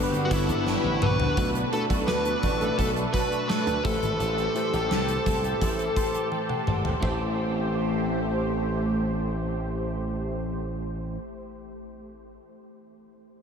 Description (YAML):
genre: 1980s-style pop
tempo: 85 BPM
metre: 4/4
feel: straight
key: A dorian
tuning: A4 = 439 Hz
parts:
  - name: warm studio violin section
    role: second line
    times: 0.0-1.4 s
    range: G4 to A4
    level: -42 LUFS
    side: left 1 dB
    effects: none
  - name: FM electric piano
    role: accompaniment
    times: 0.0-12.4 s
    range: A1 to C6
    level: -32 LUFS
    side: left 3 dB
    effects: chorus
  - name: phased analog pad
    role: sustained chords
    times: 0.0-10.6 s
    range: A3 to B5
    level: -33 LUFS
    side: right 1 dB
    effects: phaser, chorus
  - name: twelve-string electric guitar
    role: riff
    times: 0.0-11.3 s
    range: E3 to G4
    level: -34 LUFS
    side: right 2 dB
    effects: ensemble chorus, ping-pong delay
  - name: funky polysynth comp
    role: stabs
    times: 0.0-10.6 s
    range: F#3 to F#5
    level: -36 LUFS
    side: right 2 dB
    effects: none
  - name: glassy slap bass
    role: bass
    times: 0.0-11.2 s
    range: G1 to G2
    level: -30 LUFS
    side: equal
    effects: none
  - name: gated 80s drum kit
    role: drums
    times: 0.1-7.2 s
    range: hi-hat, kick drum, snare drum, toms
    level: -30 LUFS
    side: equal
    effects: none
  - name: fuzz lead guitar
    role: melody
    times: 0.3-6.3 s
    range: E4 to B4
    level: -30 LUFS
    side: equal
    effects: distortion, ping-pong delay
room: wet huge ambient reverb, RT60 7.8 s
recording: dreamy mix soaked in reverb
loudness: -24 LUFS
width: side -7 dB against mid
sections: 0.0-1.4 A section; 1.4-7.0 B section; 7.0-9.8 C section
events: drum fill 0.7-1.4, 6.3-7.0; FM electric piano fill 5.6-7.0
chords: 0.0 Gmaj7; 1.4 Bm7; 3.8 Am7